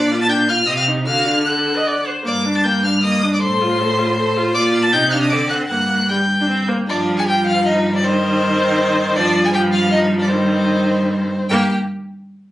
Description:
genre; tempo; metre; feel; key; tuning
quick classical-period movement for string quartet; 143-163 BPM; 3/4; rubato; G minor; A4 = 441 Hz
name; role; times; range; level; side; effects
rich violin; second line; 0.0-11.7 s; C4 to A5; -24 LUFS; equal; none
rich viola; accompaniment; 0.0-11.7 s; Eb3 to Eb5; -20 LUFS; right 1 dB; none
rich cello; bass; 0.0-11.7 s; G2 to D3; -20 LUFS; equal; none
rich violin; melody; 0.2-11.7 s; G4 to A6; -19 LUFS; left 2 dB; none
room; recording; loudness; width
light reverb; recorded on a phone in the room, club reverb; -14 LUFS; side -15 dB against mid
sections
0.0-6.9 A section; 6.9-11.5 B section; 11.5-12.5 C section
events
none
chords
0.0 Bb; 0.7 Cm; 1.1 D; 2.3 Gm; 3.4 F/A; 4.6 Bb; 4.9 Cm; 5.3 D7; 5.7 Gm; 6.9 F7sus2/G; 8.0 Cm/G; 9.2 F7sus2/G; 10.3 Cm/G; 11.5 Gm

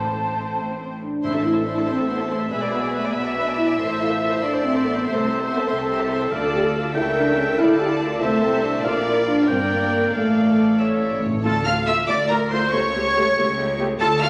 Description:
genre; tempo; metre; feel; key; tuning
quick classical-period movement for symphony orchestra; 94 BPM (dotted quarters); 6/8; straight; A minor, D minor from 6.3 s; A4 = 438 Hz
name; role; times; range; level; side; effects
rich chamber violin section; melody; 0.0-14.3 s; C4 to F6; -32 LUFS; equal; none
flute section; second line; 0.0-0.6, 11.5-14.3 s; A4 to A5; -29 LUFS; equal; none
warm chamber violin section; second line; 0.0-14.3 s; G4 to F5; -32 LUFS; equal; none
warm chamber viola section; accompaniment; 0.0-14.3 s; A3 to E5; -28 LUFS; equal; none
clear chamber double bass section; bass; 0.0-14.3 s; G1 to D2; -36 LUFS; equal; none
warm chamber cello section; bass; 0.0-14.3 s; C#2 to D3; -33 LUFS; equal; none
timpani; percussion; 0.0-1.8, 6.3-6.9, 10.8-11.4 s; A2 to D3; -34 LUFS; equal; none
mellow French horn section; sustained chords; 0.6-13.9 s; G#3 to G4; -25 LUFS; equal; none
dark clarinet; second line; 1.2-14.3 s; A4 to F5; -33 LUFS; equal; none
clear oboe; second line; 1.3-14.3 s; A4 to G5; -30 LUFS; equal; none
mellow trumpet section; stabs; 11.5-14.3 s; A4 to F5; -30 LUFS; equal; none
room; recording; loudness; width
wet recital hall reverb, RT60 1.9 s; none; -21 LUFS; mono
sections
0.0-1.2 A section; 1.2-11.5 B section; 11.5-14.3 A section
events
timpani fill 10.8-11.5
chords
0.0 Am; 2.5 E7/B; 3.8 Am; 5.1 Am/C; 6.3 Dm; 7.0 C#dim7; 7.6 Dm; 8.2 Am/C; 8.8 Bb; 9.5 Gm; 10.1 Dm/A; 10.8 A; 11.5 Dm; 12.7 A7/C#

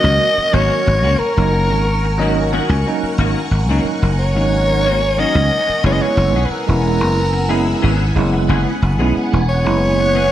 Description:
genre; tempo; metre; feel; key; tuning
jazz; 90 BPM; 4/4; straight; G# minor; A4 = 440 Hz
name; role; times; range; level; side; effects
growling soprano saxophone; melody; 0.0-10.3 s; A#4 to D#5; -18 LUFS; equal; none
bell-like tine electric piano; accompaniment; 0.0-10.2 s; F#3 to G#5; -21 LUFS; right 3 dB; medium stereo tremolo
phased string machine; sustained chords; 0.0-10.3 s; B3 to F#6; -25 LUFS; equal; ensemble chorus, phaser
clean electric guitar; stabs; 0.0-10.3 s; D#3 to G#4; -26 LUFS; left 4 dB; ensemble chorus, tape echo
dry thumbed slap bass; bass; 0.0-10.3 s; E1 to C#2; -17 LUFS; equal; none
room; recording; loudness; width
moderate recital hall reverb, RT60 1.8 s; none; -13 LUFS; side -12 dB against mid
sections
0.0-10.3 A section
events
tine electric piano fill 1.9-3.2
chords
0.0 G#9sus4; 5.8 F#9sus4

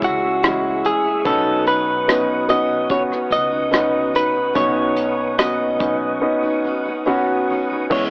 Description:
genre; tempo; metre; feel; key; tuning
pop ballad; 72 BPM; 4/4; straight; unclear; A4 = 440 Hz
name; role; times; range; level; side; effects
direct-recorded clean electric guitar; melody; 0.0-8.0 s; F#4 to D#5; -19 LUFS; equal; cassette tape
warm grand piano; accompaniment; 0.0-8.1 s; B2 to F#4; -20 LUFS; equal; cassette tape
tonewheel organ; sustained chords; 0.0-8.1 s; G#4 to E6; -30 LUFS; equal; chorus vibrato, slow rotary speaker, cassette tape
picked steel-string acoustic guitar; arpeggios; 0.0-8.1 s; B2 to G#4; -28 LUFS; equal; cassette tape, analog delay
upright bass; bass; 0.0-8.1 s; B1 to E2; -36 LUFS; equal; none
unplugged drum kit; drums; 0.0-8.1 s; crash cymbal, hi-hat, kick drum, rim click; -22 LUFS; equal; cassette tape
room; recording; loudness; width
light reverb; home recording on cassette, AM radio sound; -16 LUFS; side -39 dB against mid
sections
0.0-7.9 A section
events
none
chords
0.0 C#m; 1.3 Badd9

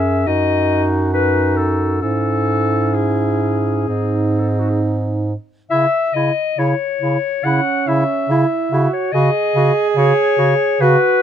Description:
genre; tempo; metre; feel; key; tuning
classical, lyrical piece for single-reed quartet; 64-73 BPM; 4/4; rubato; C# minor; A4 = 440 Hz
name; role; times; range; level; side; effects
warm clarinet; melody; 0.0-11.2 s; F#4 to F#5; -18 LUFS; left 5 dB; none
dark alto saxophone; second line; 0.0-11.2 s; C#4 to G#4; -20 LUFS; right 7 dB; none
warm clarinet; accompaniment; 0.0-11.0 s; B#3 to F#4; -22 LUFS; left 1 dB; none
clear bass clarinet; bass; 0.0-11.0 s; F#2 to C#3; -18 LUFS; right 2 dB; none
room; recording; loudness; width
little or no reverb; close, detailed microphones; -14 LUFS; side -9 dB against mid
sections
0.0-5.7 A section; 5.7-11.2 B section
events
none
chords
0.3 F#m6; 2.0 C#m/G#; 3.9 G#; 5.7 C#m; 9.1 F#5/C#

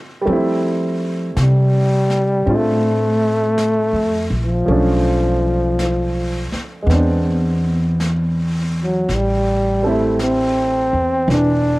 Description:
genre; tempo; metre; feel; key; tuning
jazz ballad; 54 BPM; 4/4; swing 69% on 8ths; F major; A4 = 440 Hz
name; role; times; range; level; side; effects
warm upright piano; accompaniment; 0.0-11.8 s; E3 to A4; -22 LUFS; right 1 dB; none
upright bass; bass; 0.3-11.8 s; E1 to F3; -19 LUFS; equal; none
jazz brush drum kit; drums; 0.3-11.8 s; brushed snare drum, hi-hat, snare drum; -32 LUFS; equal; cassette tape
warm trombone; melody; 1.4-11.8 s; F3 to D4; -17 LUFS; equal; cassette tape
room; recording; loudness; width
light reverb, studio reverb; home recording on cassette; -15 LUFS; side -20 dB against mid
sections
0.3-11.8 A section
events
none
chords
0.3 Fmaj9; 4.7 Bm7b5; 6.9 E7b13; 9.1 Am7

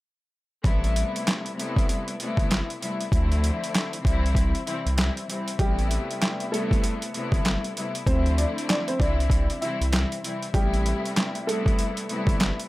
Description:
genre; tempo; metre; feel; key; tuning
hip hop, boom-bap hip-hop; 97 BPM; 4/4; swing 62% on 16ths; A minor; A4 = 442 Hz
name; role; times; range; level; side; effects
rich studio string section; accompaniment; 0.6-12.7 s; C3 to E4; -29 LUFS; left 2 dB; cassette tape, high-pass filter, low-pass filter
saturated sub bass; bass; 0.6-12.5 s; G1 to D2; -25 LUFS; equal; none
boom bap sampler-style drum kit; drums; 0.6-12.7 s; handclaps, hi-hat, kick drum, snare drum; -25 LUFS; equal; overdrive
warm upright piano; melody; 5.6-12.4 s; G3 to E5; -30 LUFS; right 1 dB; high-pass filter, low-pass filter, tape echo
room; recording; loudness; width
light reverb; none; -22 LUFS; side -18 dB against mid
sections
0.6-5.6 A section; 5.6-12.7 B section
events
none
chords
0.6 Am7; 3.1 Dm7; 4.0 C; 5.6 Am7; 8.1 Dm7; 9.0 C; 10.5 Am7

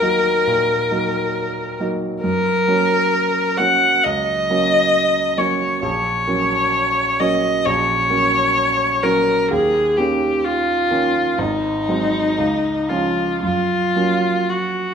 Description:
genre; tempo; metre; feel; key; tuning
classical, romantic duo for viola and grand piano; 56-68 BPM; 4/4; rubato; F# major; A4 = 440 Hz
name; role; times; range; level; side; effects
rich viola; melody; 0.0-14.9 s; D#4 to F#5; -17 LUFS; left 2 dB; none
warm grand piano; accompaniment; 0.0-14.9 s; G#1 to Eb4; -22 LUFS; right 4 dB; none
room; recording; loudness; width
wet recital hall reverb, RT60 1.3 s; minimal, uncompressed stereo recording; -16 LUFS; side -7 dB against mid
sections
0.0-14.9 A section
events
none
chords
0.0 Ebm; 2.2 F#; 5.8 F#/A#; 9.5 D#5; 11.4 G#7; 12.4 C#; 13.4 F#

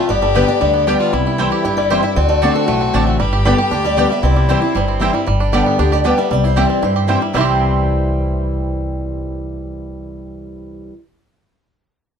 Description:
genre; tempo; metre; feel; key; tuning
bluegrass; 232 BPM; 4/4; straight; C major; A4 = 440 Hz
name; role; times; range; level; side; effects
picked acoustic archtop guitar; melody; 0.0-10.9 s; F#4 to E5; -20 LUFS; left 2 dB; plate reverb
warm fiddle; second line; 0.0-5.1 s; E4 to G4; -24 LUFS; left 5 dB; none
picked acoustic archtop guitar; accompaniment; 0.0-10.9 s; G2 to G4; -20 LUFS; left 2 dB; none
bluegrass banjo; arpeggios; 0.0-10.9 s; G3 to G4; -22 LUFS; right 5 dB; none
upright bass; bass; 0.1-10.9 s; G1 to G2; -19 LUFS; equal; none
mandolin; stabs; 0.3-10.9 s; B3 to A5; -22 LUFS; right 4 dB; none
room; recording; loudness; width
moderate studio ambience, RT60 0.5 s; dark, warm production; -13 LUFS; side -7 dB against mid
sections
0.0-5.3 A section; 5.3-7.3 B section; 7.3-9.4 C section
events
none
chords
0.1 G; 1.1 C; 2.2 D7; 3.2 G; 4.2 C; 5.3 G; 6.3 C

